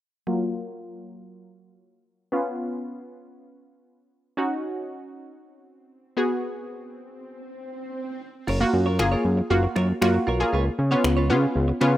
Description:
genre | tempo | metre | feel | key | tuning
dance-pop | 117 BPM | 4/4 | straight | unclear | A4 = 439 Hz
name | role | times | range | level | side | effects
analog pluck | accompaniment | 0.3-12.0 s | Gb3 to Ab4 | -24 LUFS | equal | chorus, low-pass filter
swell | sound effects | 6.7-8.5 s | none | -39 LUFS | right 1 dB | none
direct-recorded clean electric guitar | riff | 8.5-12.0 s | F4 to Db5 | -30 LUFS | right 3 dB | wide subtle chorus
fat analog bass | bass | 8.5-12.0 s | Gb1 to Db3 | -22 LUFS | equal | none
deep house drum kit | drums | 8.5-11.9 s | crash cymbal, finger snaps | -34 LUFS | left 1 dB | none
room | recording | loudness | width
light reverb | rough home demo mix | -22 LUFS | side -14 dB against mid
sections
0.3-8.5 A section; 8.5-12.0 B section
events
filter sweep on synth pluck 0.3-8.5; swell 6.7-8.5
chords
0.3 Gbmaj7; 2.3 Db7; 4.4 Ebm7; 6.2 Abm7; 8.5 Gbmaj7; 10.5 Db7

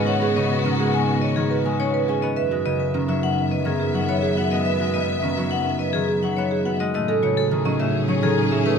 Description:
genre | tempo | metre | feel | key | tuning
classical, minimalist pattern music | 105 BPM | 4/4 | straight | unclear | A4 = 440 Hz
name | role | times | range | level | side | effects
vibraphone with hard mallets | melody | 0.0-8.8 s | G#4 to G#5 | -26 LUFS | left 10 dB | none
concert harp | accompaniment | 0.0-8.8 s | C#3 to C#4 | -24 LUFS | left 2 dB | none
rich studio string section | sustained chords | 0.0-8.8 s | B3 to E5 | -28 LUFS | left 2 dB | none
rich double bass | bass | 0.0-8.8 s | F#2 to A2 | -28 LUFS | right 4 dB | none
marimba with medium mallets | arpeggios | 0.1-8.8 s | C#4 to C#5 | -25 LUFS | right 7 dB | none
room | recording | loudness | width
moderate large studio reverb, RT60 1.1 s | none | -19 LUFS | side -6 dB against mid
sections
0.0-6.9 A section; 6.9-8.8 B section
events
none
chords
0.0 G#m7; 2.4 F#9sus4; 6.9 Amaj9#11

